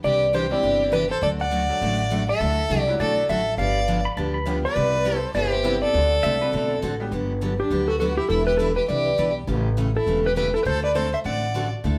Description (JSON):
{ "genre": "country, western swing", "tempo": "204 BPM", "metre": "4/4", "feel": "swing 61% on 8ths", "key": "unclear", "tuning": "A4 = 440 Hz", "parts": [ { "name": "clean lap steel guitar", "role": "melody", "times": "0.0-11.7 s", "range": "G4 to F#5", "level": "-25 LUFS", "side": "equal", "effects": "none" }, { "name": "clear fiddle", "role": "second line", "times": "0.0-11.7 s", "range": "D4 to D5", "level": "-32 LUFS", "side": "equal", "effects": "none" }, { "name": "picked steel-string acoustic guitar", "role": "accompaniment", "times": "0.0-12.0 s", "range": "C3 to B4", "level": "-30 LUFS", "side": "equal", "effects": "none" }, { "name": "upright bass", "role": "bass", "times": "0.0-12.0 s", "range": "E1 to D2", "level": "-29 LUFS", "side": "equal", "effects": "none" }, { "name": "tack piano", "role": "accompaniment", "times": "0.5-7.1 s", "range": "F#3 to A4", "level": "-34 LUFS", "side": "equal", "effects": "none" }, { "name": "pedal steel guitar", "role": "second line", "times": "4.1-7.0 s", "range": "A4 to B5", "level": "-32 LUFS", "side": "equal", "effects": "none" } ], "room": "moderate stone room reverb, RT60 0.9 s", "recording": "band playing live in one room", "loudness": "-22 LUFS", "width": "mono", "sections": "0.0-7.1 A section; 7.1-12.0 B section", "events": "none", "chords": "0.0 Cadd9; 1.2 D; 2.4 Dadd9; 3.6 G7; 4.8 Cmaj7; 5.9 D7; 7.1 Gmaj7; 8.3 Em7; 9.5 A7; 10.7 D7", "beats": "| 0.04 0.34 0.63 0.93 | 1.22 1.51 1.81 2.10 | 2.40 2.69 2.99 3.28 | 3.58 3.87 4.17 4.46 | 4.76 5.05 5.35 5.64 | 5.93 6.23 6.52 6.82 | 7.11 7.41 7.70 8.00 | 8.29 8.59 8.88 9.18 | 9.48 9.77 10.07 10.36 | 10.66 10.95 11.25 11.55 | 11.84" }